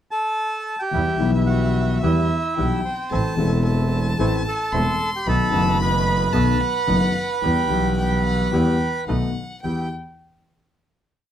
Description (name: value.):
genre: tango.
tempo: 111 BPM.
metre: 4/4.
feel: rubato.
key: E harmonic minor.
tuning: A4 = 436 Hz.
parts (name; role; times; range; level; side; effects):
bandoneon; melody; 0.1-9.9 s; C4 to B5; -24 LUFS; right 3 dB; none.
warm violin; second line; 0.9-9.9 s; E5 to C6; -29 LUFS; left 3 dB; none.
warm concert grand piano; accompaniment; 0.9-9.9 s; E1 to A4; -23 LUFS; left 4 dB; none.
bandoneon; stabs; 0.9-9.9 s; G3 to E4; -32 LUFS; right 3 dB; none.
rich double bass; bass; 0.9-9.9 s; E1 to E2; -23 LUFS; right 1 dB; none.
room: light reverb.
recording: close, detailed microphones.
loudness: -18 LUFS.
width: side -10 dB against mid.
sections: 0.0-0.9 pickup bar; 0.9-9.6 A section; 9.6-11.3 final chord.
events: none.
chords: 0.0 Gsus2; 0.9 Em; 3.1 Am; 5.3 B7; 7.4 Em; 9.1 B7; 9.6 Em.